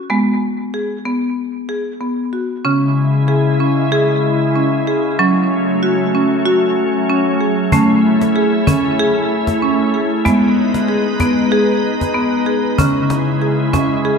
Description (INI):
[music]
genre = world meditative, meditative tuned percussion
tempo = 95 BPM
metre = 4/4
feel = swing 55% on 16ths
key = C# minor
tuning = A4 = 440 Hz
[part]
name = marimba with hard mallets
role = arpeggios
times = 0.0-14.2 s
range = C#3 to G#4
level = -15 LUFS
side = equal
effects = diffuse ambient delay
[part]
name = soft additive organ-like pad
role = sustained chords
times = 2.6-14.2 s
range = C#3 to B4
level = -17 LUFS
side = left 1 dB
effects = ensemble chorus, built-in reverb
[part]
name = cajon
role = percussion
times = 7.7-13.9 s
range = none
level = -21 LUFS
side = left 2 dB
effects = none
[sound]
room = wet echo chamber reverb, RT60 1.6 s, studio ambience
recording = dark, warm production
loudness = -13 LUFS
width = side -5 dB against mid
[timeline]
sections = 0.0-2.6 A section; 2.6-12.8 B section; 12.8-14.2 C section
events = none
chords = 0.1 G#m; 2.6 C#m; 5.2 F#m; 7.7 A; 10.3 G#m; 12.8 C#m